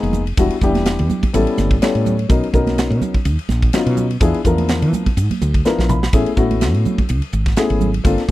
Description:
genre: electric jazz fusion.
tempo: 125 BPM.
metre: 4/4.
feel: swing 55% on 16ths.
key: unclear.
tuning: A4 = 441 Hz.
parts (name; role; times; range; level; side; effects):
dark baby grand piano; accompaniment; 0.0-8.3 s; F3 to B5; -19 LUFS; left 3 dB; none.
woody fretless electric bass; bass; 0.0-8.3 s; E1 to E3; -18 LUFS; equal; none.
crisp fusion drum kit; drums; 0.0-8.3 s; hi-hat, kick drum, ride cymbal, snare drum, toms; -19 LUFS; equal; none.
congas; percussion; 0.1-7.9 s; none; -24 LUFS; right 5 dB; none.
room: little or no reverb.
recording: dry, close 1970s-style studio recording.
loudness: -14 LUFS.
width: side -16 dB against mid.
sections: 0.0-8.3 A section.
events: grand piano fill 1.6-2.3, 5.4-6.1; drum fill 5.7-6.1.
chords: 0.4 Em7; 1.3 A9; 2.3 Bmaj9; 4.2 E7b9; 6.1 Amaj9.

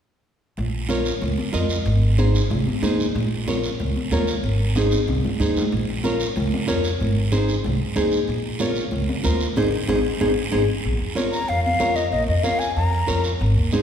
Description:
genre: latin, cumbia.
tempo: 187 BPM.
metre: 4/4.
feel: straight.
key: Bb minor.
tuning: A4 = 439 Hz.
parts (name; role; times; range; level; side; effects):
upright bass; bass; 0.6-13.7 s; Ab1 to F2; -23 LUFS; equal; none.
congas; percussion; 0.6-13.8 s; none; -27 LUFS; left 1 dB; none.
guiro; percussion; 0.6-13.8 s; none; -32 LUFS; right 4 dB; none.
nylon-string guitar; accompaniment; 0.9-13.8 s; Eb4 to Eb5; -24 LUFS; equal; none.
breathy concert flute; melody; 11.3-13.2 s; Eb5 to Bb5; -23 LUFS; left 2 dB; none.
room: wet concert hall reverb, RT60 2.1 s.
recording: recorded in a church or concert hall.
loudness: -19 LUFS.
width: side -8 dB against mid.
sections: 0.6-10.8 A section; 10.8-13.8 B section.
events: drum fill 4.8-5.7, 10.2-10.8; band accent 9.6-10.8.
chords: 0.6 Bbm; 1.9 Ab; 3.2 Bbm; 4.4 Ab; 5.7 Bbm; 7.0 Ab; 8.3 Bbm; 9.6 Ab; 10.8 Bbm.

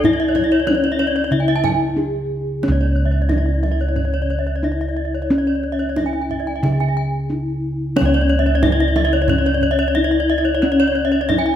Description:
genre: Balinese gamelan.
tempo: 90 BPM.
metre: 4/4.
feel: straight.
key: unclear.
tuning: A4 = 440 Hz.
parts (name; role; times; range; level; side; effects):
gamelan-type bronze metallophone; melody; 0.0-11.6 s; C#4 to G#4-30c; -21 LUFS; left 3 dB; none.
gamelan-type bronze metallophone; arpeggios; 0.0-11.5 s; C#5 to A5-20c; -24 LUFS; left 6 dB; none.
gamelan-type bossed gongs; bass; 0.0-11.6 s; C#2 to E4-30c; -19 LUFS; equal; none.
kendang; percussion; 0.0-11.5 s; none; -27 LUFS; right 4 dB; none.
gamelan-type bronze metallophone; arpeggios; 0.2-11.5 s; C#5 to G#5-30c; -24 LUFS; right 6 dB; none.
room: moderate recital hall reverb, RT60 1.6 s.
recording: none.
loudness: -16 LUFS.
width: side -10 dB against mid.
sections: 0.0-2.6 A section; 2.6-11.6 B section.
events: break 1.6-2.6, 7.0-8.0; drum fill 2.1-2.6.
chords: none.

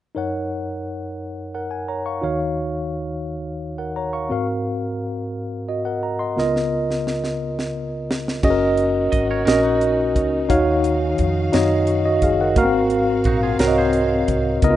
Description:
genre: slow gospel.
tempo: 58 BPM (dotted quarters).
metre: 6/8.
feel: straight.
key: F# major.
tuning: A4 = 441 Hz.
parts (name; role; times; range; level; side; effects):
tine electric piano; accompaniment; 0.1-14.8 s; C#2 to C#6; -19 LUFS; equal; medium stereo tremolo.
tight funk drum kit; drums; 6.4-14.8 s; crash cymbal, hi-hat, kick drum, snare drum; -23 LUFS; right 1 dB; none.
warm studio string section; sustained chords; 8.4-14.8 s; E#3 to E#5; -30 LUFS; equal; none.
hollow-body short-scale fingered electric bass; bass; 8.4-14.8 s; F#1 to F#2; -24 LUFS; equal; none.
twangy electric guitar; second line; 9.1-14.6 s; D#4 to D#5; -31 LUFS; right 6 dB; none.
room: light reverb, studio reverb.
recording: rough home demo mix, nothing above 10.8 kHz.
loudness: -18 LUFS.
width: side -13 dB against mid.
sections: 0.2-8.4 A section; 8.4-14.8 B section.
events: drum fill 6.4-8.4.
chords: 0.2 F#6; 2.2 D#m9; 4.3 G#13; 6.4 C#13; 8.4 F#6; 10.5 D#m9; 12.6 G#13.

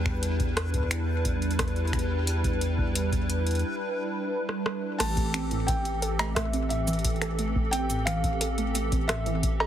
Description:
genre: IDM.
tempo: 88 BPM.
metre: 4/4.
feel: straight.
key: A minor.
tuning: A4 = 440 Hz.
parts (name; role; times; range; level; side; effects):
hollow soft pad; sustained chords; 0.0-9.7 s; E3 to B4; -31 LUFS; equal; ensemble chorus.
round analog bass; bass; 0.0-9.7 s; A1 to E2; -30 LUFS; equal; none.
backwards swelling texture; texture; 0.0-3.6 s; G4 to G5; -44 LUFS; right 1 dB; built-in reverb.
booming analog drum machine; drums; 0.1-9.7 s; cabasa, cowbell, crash cymbal, finger snaps, hi-hat, rim click; -31 LUFS; equal; none.
electronic kick drum; drums; 0.1-9.6 s; none; -30 LUFS; equal; none.
felt-muted upright piano; melody; 5.0-9.7 s; E5 to A5; -33 LUFS; right 1 dB; digital delay.
warbly dusty pluck; arpeggios; 5.0-9.7 s; A2 to A4; -33 LUFS; right 4 dB; analog chorus, digital delay.
room: little or no reverb.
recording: heavily compressed radio sound.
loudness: -25 LUFS.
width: side -10 dB against mid.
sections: 0.0-5.0 A section; 5.0-9.7 B section.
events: break 3.6-5.0; drum fill 4.5-5.0.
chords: 0.0 Em7; 5.0 Am7.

